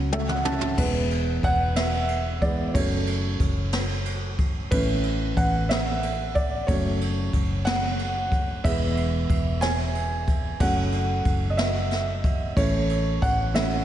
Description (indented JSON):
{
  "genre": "six-eight pop ballad",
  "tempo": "61 BPM (dotted quarters)",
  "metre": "6/8",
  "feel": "straight",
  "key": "F# minor",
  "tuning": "A4 = 440 Hz",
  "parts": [
    { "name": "felt-muted upright piano", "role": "accompaniment", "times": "0.0-13.8 s", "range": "E3 to A5", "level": "-26 LUFS", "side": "right 2 dB", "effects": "none" },
    { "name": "vintage muted fingered electric bass", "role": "bass", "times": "0.0-13.8 s", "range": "E1 to C#2", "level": "-27 LUFS", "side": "equal", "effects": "none" },
    { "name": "jazz brush drum kit", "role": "drums", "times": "0.1-13.7 s", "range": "crash cymbal, kick drum, ride cymbal, snare drum, toms", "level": "-26 LUFS", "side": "equal", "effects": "none" }
  ],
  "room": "moderate lush hall reverb, RT60 1.9 s, small room reverb",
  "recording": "big arena sound, nothing above 10.7 kHz",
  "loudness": "-22 LUFS",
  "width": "side -11 dB against mid",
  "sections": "0.8-13.8 A section",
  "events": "drum fill 0.0-0.8; felt piano fill 0.0-0.8; felt piano solo 0.8-13.8",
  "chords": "0.0 F#m; 0.8 E; 2.7 F#m; 4.7 A; 6.7 F#m; 8.6 E; 10.6 F#m; 12.6 A",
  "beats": "| 0.78 1.76 | 2.74 3.73 | 4.71 5.69 | 6.67 7.66 | 8.64 9.62 | 10.60 11.58 | 12.57 13.55"
}